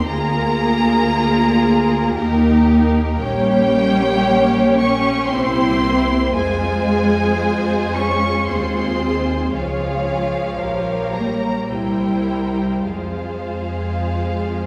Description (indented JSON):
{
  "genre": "classical, slow romantic movement for string orchestra",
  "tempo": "57 BPM",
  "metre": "3/4",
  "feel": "rubato",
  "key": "F minor from 3.2 s",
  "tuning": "A4 = 439 Hz",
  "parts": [
    { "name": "muted symphonic violin section", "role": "melody", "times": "0.0-14.7 s", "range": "F5 to Db6", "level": "-26 LUFS", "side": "equal", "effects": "none" },
    { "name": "muted symphonic violin section", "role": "second line", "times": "0.0-14.7 s", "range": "G4 to Db5", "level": "-25 LUFS", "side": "equal", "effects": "none" },
    { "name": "muted symphonic viola section", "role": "accompaniment", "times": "0.0-14.7 s", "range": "G3 to G4", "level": "-23 LUFS", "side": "equal", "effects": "none" },
    { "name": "muted symphonic cello section", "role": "bass", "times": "0.0-14.7 s", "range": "F3 to Db4", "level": "-25 LUFS", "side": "equal", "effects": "none" },
    { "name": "muted symphonic double bass section", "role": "bass", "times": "0.0-14.7 s", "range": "Bb1 to F2", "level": "-26 LUFS", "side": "equal", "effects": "none" }
  ],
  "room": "wet recital hall reverb, RT60 1.7 s",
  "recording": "recorded in a church or concert hall",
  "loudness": "-18 LUFS",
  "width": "mono",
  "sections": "0.0-14.7 A section",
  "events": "none",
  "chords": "0.1 Bb7/D; 2.2 Eb; 3.2 Gdim/Bb; 5.3 C7; 6.4 Fm; 9.5 Db; 10.6 Gdim/Bb; 11.7 C7; 12.9 Fm"
}